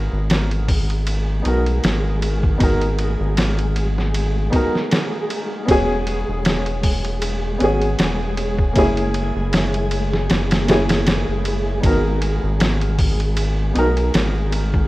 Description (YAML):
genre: trip hop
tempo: 78 BPM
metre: 4/4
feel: swing 55% on 16ths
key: G# minor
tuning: A4 = 440 Hz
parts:
  - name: felt-muted upright piano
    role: accompaniment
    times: 0.0-14.9 s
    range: A#3 to A#4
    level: -22 LUFS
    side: equal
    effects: tremolo, tape echo
  - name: round analog bass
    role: bass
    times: 0.0-14.9 s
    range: E1 to B1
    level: -21 LUFS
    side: equal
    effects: none
  - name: flickering grainy texture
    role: texture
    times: 0.1-14.9 s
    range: G#3 to G#4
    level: -27 LUFS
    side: equal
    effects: built-in reverb
  - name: trip hop sampler-style drum kit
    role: drums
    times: 0.3-14.9 s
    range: hi-hat, kick drum, ride cymbal, snare drum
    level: -21 LUFS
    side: equal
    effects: vintage 12-bit sampler grit
room: light reverb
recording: rough home demo mix, vinyl crackle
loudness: -17 LUFS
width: side -18 dB against mid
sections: 0.0-14.9 A section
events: none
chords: 0.0 G#m7; 5.7 E6; 8.8 F#7; 11.8 G#m7